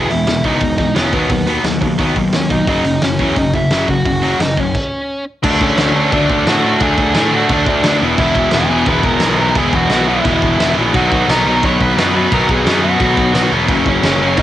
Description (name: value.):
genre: punk rock.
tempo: 174 BPM.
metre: 4/4.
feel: straight.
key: unclear.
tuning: A4 = 439 Hz.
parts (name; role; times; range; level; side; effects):
dark smooth lead guitar; melody; 0.0-14.4 s; B3 to C#6; -18 LUFS; equal; overdrive, cassette tape.
distorted electric guitar; riff; 0.0-14.4 s; E2 to D4; -18 LUFS; left 7 dB; distortion.
tight distorted guitar; riff; 0.0-14.4 s; F#2 to E4; -18 LUFS; right 8 dB; distortion.
fuzz picked electric bass; bass; 0.0-14.4 s; E1 to A2; -19 LUFS; equal; overdrive.
loose indie drum kit; drums; 0.1-14.4 s; crash cymbal, hi-hat, kick drum, snare drum; -19 LUFS; equal; cassette tape.
room: little or no reverb.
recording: home recording on cassette.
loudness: -12 LUFS.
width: side -12 dB against mid.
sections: 0.0-5.4 A section; 5.4-14.4 B section.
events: stop 4.7-5.4.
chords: 0.0 E; 1.1 B/D#; 2.7 F#5; 5.4 D; 8.0 E; 10.9 B; 13.7 F#.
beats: 0.27 0.61 0.96 | 1.30 1.65 1.99 2.33 | 2.68 3.02 3.37 3.71 | 4.06 4.40 4.75 5.09 | 5.44 5.78 6.12 6.47 | 6.81 7.16 7.50 7.84 | 8.19 8.53 8.88 9.22 | 9.56 9.91 10.25 10.59 | 10.94 11.28 11.63 11.97 | 12.31 12.66 13.00 13.35 | 13.69 14.04 14.38.